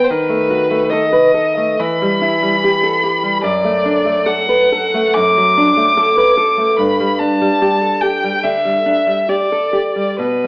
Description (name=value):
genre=romantic duo for violin and classical guitar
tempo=71 BPM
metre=4/4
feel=uneven beats, rubato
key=unclear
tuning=A4 = 443 Hz
part: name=rich violin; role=melody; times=0.0-10.5 s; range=B4 to D6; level=-15 LUFS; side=equal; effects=none
part: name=nylon-string guitar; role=accompaniment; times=0.0-10.5 s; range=F#2 to B4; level=-15 LUFS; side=equal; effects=none
room=moderate recital hall reverb, RT60 1.5 s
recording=worn, warbling old tape, cassette tape, warbly pitch drift, AM radio sound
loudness=-12 LUFS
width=side -28 dB against mid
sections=0.0-10.5 A section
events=none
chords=0.1 B7/D#; 1.8 Em; 3.4 D/F#; 6.8 G5